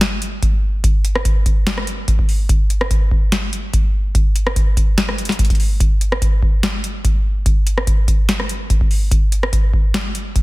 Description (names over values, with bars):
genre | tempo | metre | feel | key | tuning
hip hop | 145 BPM | 4/4 | half-time | none | none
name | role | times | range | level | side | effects
booming analog drum machine | drums | 0.0-10.4 s | hi-hat, kick drum, rim click, snare drum | -15 LUFS | equal | overdrive
room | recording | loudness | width
little or no reverb | dense, heavily limited modern master | -15 LUFS | side -20 dB against mid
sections
0.0-10.4 A section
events
none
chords
none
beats
0.01 0.42 | 0.84 1.25 1.67 2.08 | 2.49 2.91 3.32 3.73 | 4.15 4.56 4.98 5.39 | 5.80 6.22 6.63 7.05 | 7.46 7.87 8.29 8.70 | 9.11 9.53 9.94 10.36